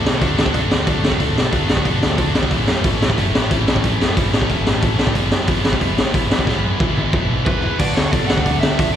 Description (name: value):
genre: punk rock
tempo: 182 BPM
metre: 4/4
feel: straight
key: unclear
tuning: A4 = 440 Hz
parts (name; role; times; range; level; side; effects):
- distorted electric guitar; riff; 0.0-8.9 s; E2 to D4; -23 LUFS; left 12 dB; overdrive, slapback echo
- distorted electric guitar; riff; 0.0-9.0 s; G#2 to F#4; -24 LUFS; right 14 dB; overdrive, slapback echo
- growling picked electric bass; bass; 0.0-8.9 s; F#1 to B2; -23 LUFS; equal; overdrive
- raw garage drum kit; drums; 0.1-8.9 s; crash cymbal, hi-hat, kick drum, snare drum, toms; -18 LUFS; equal; none
- crunchy overdriven guitar; melody; 7.5-9.0 s; B4 to F#5; -24 LUFS; right 3 dB; slapback echo
room: little or no reverb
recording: live gig heard through the venue's PA, recital hall reverb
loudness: -15 LUFS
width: side -10 dB against mid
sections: 0.0-7.8 A section; 7.8-9.0 B section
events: drum fill 6.5-7.8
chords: 0.0 D; 2.5 A; 5.2 E; 7.8 D